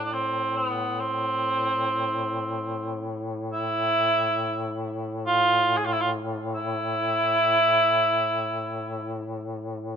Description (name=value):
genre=caucasian folk, Caucasian lament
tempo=free time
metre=none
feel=none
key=A minor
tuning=A4 = 443 Hz
part: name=mellow cor anglais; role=melody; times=0.0-9.2 s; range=B3 to G#4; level=-23 LUFS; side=right 1 dB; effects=none
part: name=mellow duduk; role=drone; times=0.0-10.0 s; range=A2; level=-31 LUFS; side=left 2 dB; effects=none
room=moderate plate reverb, RT60 3.4 s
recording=rough home demo mix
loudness=-23 LUFS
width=side -7 dB against mid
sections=0.0-10.0 A section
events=none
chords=none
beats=free time